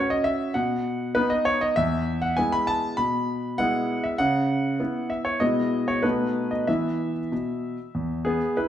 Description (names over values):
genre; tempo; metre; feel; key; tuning
classical-period piano sonatina; 93-100 BPM; 4/4; rubato; E major; A4 = 437 Hz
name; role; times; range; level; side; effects
clear concert grand piano; solo; 0.0-8.7 s; E2 to B5; -22 LUFS; equal; none
room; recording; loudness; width
wet recital hall reverb, RT60 1.4 s; recorded in a church or concert hall; -22 LUFS; side -10 dB against mid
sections
0.0-8.7 A section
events
none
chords
0.0 F#5; 0.6 B; 1.8 E; 4.2 C#m7; 5.4 E/B; 6.0 B7; 6.7 E5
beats
0.56 1.16 | 1.77 2.38 2.98 3.59 | 4.19 4.80 5.41 6.04 | 6.68 7.32 7.95 8.58